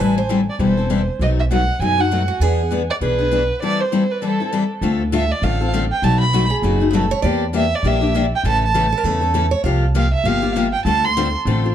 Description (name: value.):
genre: acoustic string swing (jazz manouche).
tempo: 199 BPM.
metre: 4/4.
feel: swing 58% on 8ths.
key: A minor, D minor from 4.8 s.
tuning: A4 = 440 Hz.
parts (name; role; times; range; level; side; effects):
picked steel-string acoustic guitar; second line; 0.0-2.8, 6.5-9.9 s; F#4 to F5; -23 LUFS; right 6 dB; none.
picked steel-string acoustic guitar; accompaniment; 0.0-11.7 s; B2 to A4; -20 LUFS; left 5 dB; none.
upright bass; bass; 0.0-11.7 s; E1 to F#2; -20 LUFS; right 1 dB; none.
warm violin; melody; 0.5-11.3 s; A4 to C6; -22 LUFS; right 4 dB; plate reverb, tape echo.
room: moderate studio reverb, RT60 0.6 s.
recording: dark, warm production.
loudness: -16 LUFS.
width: side -10 dB against mid.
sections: 0.0-4.8 A section; 4.8-11.7 B section.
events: none.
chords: 0.0 Am7; 1.2 B7; 2.4 E7; 3.6 Am7; 4.8 Dm7; 6.0 B7; 7.2 Em7b5; 8.4 A; 9.7 C7sus4; 10.9 Dm7.